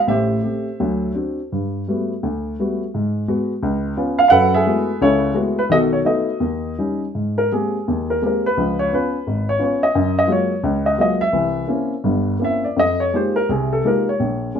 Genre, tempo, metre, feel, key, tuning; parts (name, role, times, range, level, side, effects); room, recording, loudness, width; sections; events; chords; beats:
solo jazz; 170 BPM; 4/4; swing 63% on 8ths, rubato; Ab major from 7.2 s; A4 = 443 Hz
dark grand piano; solo; 0.0-14.6 s; G1 to F#5; -17 LUFS; equal
moderate studio reverb, RT60 0.8 s; -17 LUFS; side -8 dB against mid
0.0-7.2 A section; 7.2-14.6 B section
grand piano solo 7.2-14.6
0.1 Am7; 0.8 D7; 1.5 Gmaj9; 2.9 G#m7; 3.6 C#7; 4.3 F#m11; 5.7 B7; 6.4 D#7; 7.2 Abmaj9; 8.6 Db7; 10.0 Gbmaj9; 11.3 C7b9; 12.8 Fm11
| 0.07 0.43 0.79 1.15 | 1.51 1.87 2.23 2.58 | 2.93 3.29 3.63 3.98 | 4.32 4.67 5.01 5.36 | 5.71 6.06 6.42 6.79 | 7.16 7.52 7.88 8.23 | 8.58 8.92 9.27 9.61 | 9.95 10.30 10.64 10.98 | 11.33 11.69 12.05 12.41 | 12.78 13.14 13.50 13.86 | 14.21 14.56